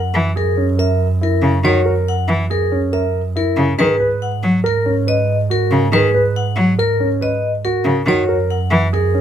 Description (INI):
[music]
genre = classical, minimalist pattern music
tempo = 140 BPM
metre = 5/4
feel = straight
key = G# minor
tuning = A4 = 438 Hz
[part]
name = vibraphone with hard mallets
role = melody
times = 0.0-9.2 s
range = A#4 to F#5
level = -21 LUFS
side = left 5 dB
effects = none
[part]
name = dark double bass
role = bass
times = 0.0-9.2 s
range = F#2 to G#2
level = -19 LUFS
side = right 2 dB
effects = none
[part]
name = rich cello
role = accompaniment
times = 0.1-8.9 s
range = C#3 to F#3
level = -16 LUFS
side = equal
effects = none
[part]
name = dark grand piano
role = arpeggios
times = 0.4-9.2 s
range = C#4 to B4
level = -20 LUFS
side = right 3 dB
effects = none
[sound]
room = little or no reverb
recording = close, detailed microphones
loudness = -14 LUFS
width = side -9 dB against mid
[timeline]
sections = 0.0-9.2 A section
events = none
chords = 0.0 F#9; 3.8 G#m9; 8.1 F#9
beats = 0.36 0.79 1.22 | 1.64 2.07 2.50 2.93 3.36 | 3.79 4.22 4.64 5.07 5.50 | 5.93 6.36 6.79 7.22 7.64 | 8.07 8.50 8.93